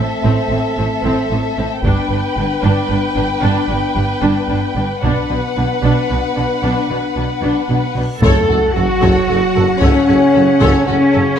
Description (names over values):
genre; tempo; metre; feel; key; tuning
cinematic, epic orchestral film score; 113 BPM; 3/4; straight; F# phrygian; A4 = 440 Hz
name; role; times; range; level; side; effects
dark symphonic violin section; melody; 0.0-11.4 s; E5 to G5; -24 LUFS; left 4 dB; none
warm symphonic violin section; second line; 0.0-11.2 s; F#4 to C#5; -23 LUFS; left 2 dB; none
warm symphonic viola section; accompaniment; 0.0-11.2 s; C4 to A4; -23 LUFS; equal; none
warm French horn section; sustained chords; 0.0-11.4 s; A3 to A4; -19 LUFS; left 2 dB; none
rich symphonic cello section; bass; 0.0-11.4 s; G2 to A4; -21 LUFS; right 2 dB; none
warm studio double bass section; bass; 0.0-11.2 s; G1 to F#2; -21 LUFS; right 3 dB; none
taiko ensemble; drums; 1.8-11.1 s; none; -17 LUFS; equal; none
reverse cymbal and sub drop; sound effects; 8.0-9.8 s; none; -27 LUFS; equal; none
warm trombone section; sustained chords; 8.2-11.4 s; C#3 to A3; -20 LUFS; right 5 dB; none
warm tuba; bass; 8.2-11.2 s; F#1; -23 LUFS; right 4 dB; none
timpani; percussion; 8.2-9.0 s; F#2; -24 LUFS; left 1 dB; none
room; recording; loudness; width
moderate recital hall reverb, RT60 1.5 s; none; -13 LUFS; side -8 dB against mid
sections
0.0-8.2 A section; 8.2-11.4 B section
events
build-up 0.0-8.2; reverse cymbal 8.0; impact 8.2-9.8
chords
0.0 Am; 1.8 G; 5.0 Bm; 8.2 F#m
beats
| 0.25 0.78 1.31 | 1.84 2.37 2.90 | 3.44 3.97 4.50 | 5.03 5.56 6.09 | 6.62 7.15 7.68 | 8.22 8.75 9.28 | 9.81 10.34 10.87